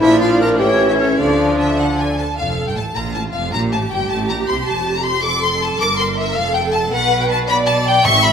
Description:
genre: quick classical-period movement for symphony orchestra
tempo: 105 BPM (dotted quarters)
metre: 6/8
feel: straight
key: unclear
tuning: A4 = 436 Hz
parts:
  - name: rich studio violin section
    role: melody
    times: 0.0-8.3 s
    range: D5 to D6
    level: -20 LUFS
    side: left 4 dB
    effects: none
  - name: clear chamber violin section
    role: second line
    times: 0.0-8.3 s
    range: C#5 to D6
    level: -23 LUFS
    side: equal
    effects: none
  - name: dark clarinet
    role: second line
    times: 0.0-2.2 s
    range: C#4 to Bb4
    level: -17 LUFS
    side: equal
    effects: none
  - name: flute section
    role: second line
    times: 0.0-2.2 s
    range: C#5 to D5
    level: -21 LUFS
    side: left 2 dB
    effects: none
  - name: rich studio viola section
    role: accompaniment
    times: 0.0-8.3 s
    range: C#4 to E5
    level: -22 LUFS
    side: right 2 dB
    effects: none
  - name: warm bassoon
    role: accompaniment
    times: 0.0-2.2 s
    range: E3 to F3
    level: -23 LUFS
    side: equal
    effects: none
  - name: mellow French horn section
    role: sustained chords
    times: 0.0-2.2 s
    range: C#4 to Bb4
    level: -22 LUFS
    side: left 2 dB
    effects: none
  - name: clear chamber double bass section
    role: bass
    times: 0.0-8.3 s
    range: F1 to D2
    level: -26 LUFS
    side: right 3 dB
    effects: none
  - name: rich chamber cello section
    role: bass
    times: 0.0-8.3 s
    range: F2 to D3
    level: -24 LUFS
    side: right 3 dB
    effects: none
  - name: timpani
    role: percussion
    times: 8.1-8.3 s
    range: A2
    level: -21 LUFS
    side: left 2 dB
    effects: none
room: wet scoring stage reverb, RT60 1.7 s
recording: none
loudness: -14 LUFS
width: side -7 dB against mid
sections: 0.0-2.4 A section; 2.4-8.3 A section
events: none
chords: 0.0 Bb; 0.6 A7; 1.2 Dm; 2.4 Fadd11; 3.5 Gmadd9; 4.1 Am7; 4.7 F; 5.8 C9/G; 6.4 F; 6.9 Bm7

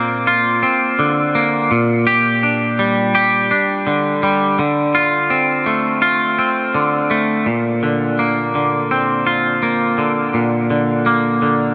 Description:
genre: rock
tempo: 83 BPM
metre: 4/4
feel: straight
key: Bb major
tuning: A4 = 441 Hz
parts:
  - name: twangy electric guitar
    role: solo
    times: 0.0-11.7 s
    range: Bb2 to G4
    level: -16 LUFS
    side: equal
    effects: subtle chorus, digital delay
room: moderate huge ambient reverb, RT60 6.9 s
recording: none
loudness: -16 LUFS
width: mono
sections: 0.0-7.5 A section; 7.5-11.7 B section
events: none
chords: 0.0 Bbadd9; 1.7 Gm/Bb; 4.6 Dm7; 7.5 Bbadd9

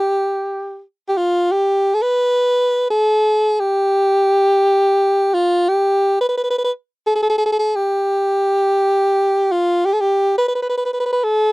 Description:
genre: persian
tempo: 86 BPM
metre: 3/4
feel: straight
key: unclear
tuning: A4 = 442 Hz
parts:
  - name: breathy soprano saxophone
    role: solo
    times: 0.0-11.5 s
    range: F4 to B4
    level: -14 LUFS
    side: equal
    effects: none
room: little or no reverb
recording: dry, close 1970s-style studio recording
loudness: -15 LUFS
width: side -22 dB against mid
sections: 0.0-1.5 A section; 1.5-11.5 B section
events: none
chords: none

